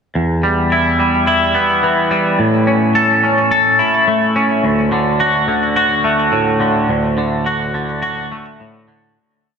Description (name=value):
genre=post-rock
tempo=107 BPM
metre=4/4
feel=straight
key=D major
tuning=A4 = 440 Hz
part: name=twangy electric guitar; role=solo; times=0.2-9.2 s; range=D2 to A4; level=-12 LUFS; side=equal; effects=wide subtle chorus, ping-pong delay
room=wet cathedral reverb, RT60 5.9 s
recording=dreamy mix soaked in reverb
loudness=-12 LUFS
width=side -6 dB against mid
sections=0.2-9.2 A section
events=fade-out 6.9-9.2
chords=0.2 Em; 2.4 A; 4.6 D